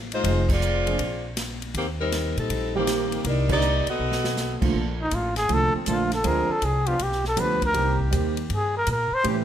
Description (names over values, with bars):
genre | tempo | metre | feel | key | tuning
jazz, big band swing | 160 BPM | 4/4 | swing 66% on 8ths | Bb major | A4 = 442 Hz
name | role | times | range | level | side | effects
upright bass | bass | 0.0-9.4 s | F1 to Bb2 | -27 LUFS | equal | none
dark saxophone section | melody | 0.1-4.6 s | Eb3 to Eb5 | -26 LUFS | left 1 dB | none
swinging big-band drum kit | drums | 0.1-9.4 s | crash cymbal, hi-hat, kick drum, ride cymbal, snare drum | -31 LUFS | equal | none
warm concert grand piano | accompaniment | 0.2-9.4 s | D3 to Ab4 | -28 LUFS | right 5 dB | none
brilliant trombone section | sustained chords | 4.7-9.4 s | Eb3 to A4 | -35 LUFS | left 2 dB | none
breathy trumpet | melody | 5.0-9.3 s | C4 to C5 | -24 LUFS | equal | none
room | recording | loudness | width
light reverb | none | -22 LUFS | side -10 dB against mid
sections
0.0-4.7 A section; 4.7-9.4 B section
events
band accent 0.4, 3.4; drum fill 4.0-4.4; trumpet solo 4.7-9.4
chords
0.2 Fm7; 1.0 Bb5; 1.7 Eb6; 3.2 Cm9; 4.0 B7#11; 4.7 Bbmaj7; 6.2 Dm7b5; 7.0 G7; 7.7 Cm7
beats
| 0.24 0.61 0.99 1.37 | 1.74 2.12 2.50 2.87 | 3.25 3.62 4.00 4.37 | 4.75 5.12 5.50 5.87 | 6.25 6.62 7.00 7.37 | 7.75 8.12 8.50 8.87 | 9.25